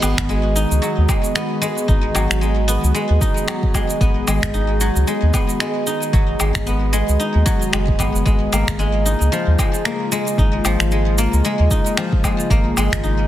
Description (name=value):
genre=organic downtempo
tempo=113 BPM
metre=4/4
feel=swing 57% on 16ths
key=G# dorian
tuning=A4 = 439 Hz
part: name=airy breathy pad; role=sustained chords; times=0.0-13.3 s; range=C#3 to G#4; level=-25 LUFS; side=left 1 dB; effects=chorus, sidechain pumping, shimmer reverb
part: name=guzheng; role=arpeggios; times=0.0-13.3 s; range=E#3 to D#4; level=-21 LUFS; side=left 1 dB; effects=digital delay, shimmer reverb
part: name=round analog bass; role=bass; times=0.0-13.3 s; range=F#1 to D#2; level=-18 LUFS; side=equal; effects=none
part: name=electronic woodblock, cabasa and finger snaps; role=drums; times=0.0-13.2 s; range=none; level=-24 LUFS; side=equal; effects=soft clipping on snare
part: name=electronic kick drum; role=drums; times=0.2-13.0 s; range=none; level=-19 LUFS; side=equal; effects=none
room=light reverb, digital ambience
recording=dense, heavily limited modern master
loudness=-15 LUFS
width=side -13 dB against mid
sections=0.0-13.3 A section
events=none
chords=0.0 G#m7; 8.3 A#m7/G#